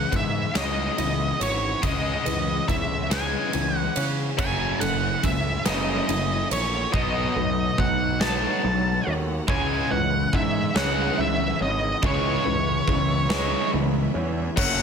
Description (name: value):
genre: post-rock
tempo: 47 BPM (dotted quarters)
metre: 6/8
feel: straight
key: C# minor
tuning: A4 = 440 Hz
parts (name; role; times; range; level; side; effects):
- octave-fuzz lead guitar; melody; 0.0-14.8 s; C#5 to A5; -27 LUFS; right 1 dB; distortion, slapback echo
- clear studio string section; sustained chords; 0.0-14.8 s; C#3 to G#5; -37 LUFS; right 1 dB; none
- electric guitar through a small old amp; arpeggios; 0.0-14.6 s; F#2 to D#4; -34 LUFS; left 3 dB; slapback echo
- felt-muted upright piano; arpeggios; 0.0-14.8 s; E4 to E5; -37 LUFS; right 2 dB; slapback echo
- tight distorted guitar; riff; 0.0-14.8 s; F#2 to C#4; -29 LUFS; left 11 dB; distortion
- fuzz picked electric bass; bass; 0.0-14.8 s; F#1 to C#3; -29 LUFS; right 1 dB; overdrive
- huge arena drum kit; drums; 0.1-14.8 s; crash cymbal, kick drum, ride cymbal, snare drum; -28 LUFS; right 1 dB; none
- cranked stack guitar; riff; 4.4-14.1 s; F#2 to C#4; -29 LUFS; right 13 dB; overdrive
room: light reverb, small room ambience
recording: none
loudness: -21 LUFS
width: side -6 dB against mid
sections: 0.0-14.6 A section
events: build-up 0.0-14.6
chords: 0.0 C#m7; 4.4 F#m7; 6.9 B7; 9.5 C#m7